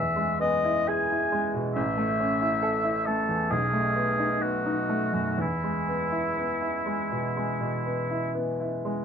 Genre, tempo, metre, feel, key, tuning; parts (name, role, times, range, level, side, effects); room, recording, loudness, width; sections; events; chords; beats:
classical, romantic duo for oboe and grand piano; 60-69 BPM; 4/4; rubato; E major; A4 = 438 Hz
warm oboe; melody; 0.0-8.3 s; E4 to G#5; -28 LUFS; left 1 dB
bright grand piano; accompaniment; 0.0-9.0 s; A1 to A4; -27 LUFS; equal
moderate studio ambience, RT60 0.5 s; minimal, uncompressed stereo recording; -24 LUFS; side -7 dB against mid
0.0-9.0 A section
0.0 E; 1.8 A; 3.5 B7; 5.4 E
0.88 | 1.76 2.63 3.51 4.42 | 5.39 6.37 7.35 8.34